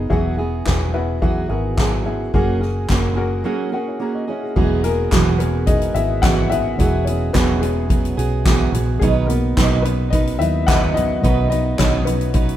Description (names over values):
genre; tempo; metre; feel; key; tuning
piano-driven pop; 108 BPM; 4/4; straight; unclear; A4 = 440 Hz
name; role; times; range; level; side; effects
warm upright piano; accompaniment; 0.0-12.6 s; B2 to B5; -23 LUFS; left 5 dB; none
fingerpicked steel-string acoustic guitar; riff; 0.0-12.6 s; B2 to B4; -22 LUFS; right 6 dB; none
vintage muted fingered electric bass; bass; 0.0-12.6 s; E1 to D#2; -21 LUFS; equal; none
soft-mallet drum kit; drums; 0.1-12.6 s; crash cymbal, handclaps, hi-hat, kick drum, snare drum, toms; -20 LUFS; equal; none
room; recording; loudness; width
light reverb; rough home demo mix; -16 LUFS; side -12 dB against mid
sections
0.0-4.6 A section; 4.6-12.6 B section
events
break 3.5-4.6; upright piano fill 3.5-4.6; upright piano solo 4.6-12.6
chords
0.1 Eadd9; 2.3 F#add9; 4.6 Eadd9; 9.0 B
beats
| 0.11 0.67 1.23 1.78 | 2.34 2.90 3.45 4.01 | 4.56 5.12 5.68 6.23 | 6.79 7.34 7.90 8.46 | 9.01 9.57 10.13 10.68 | 11.24 11.79 12.35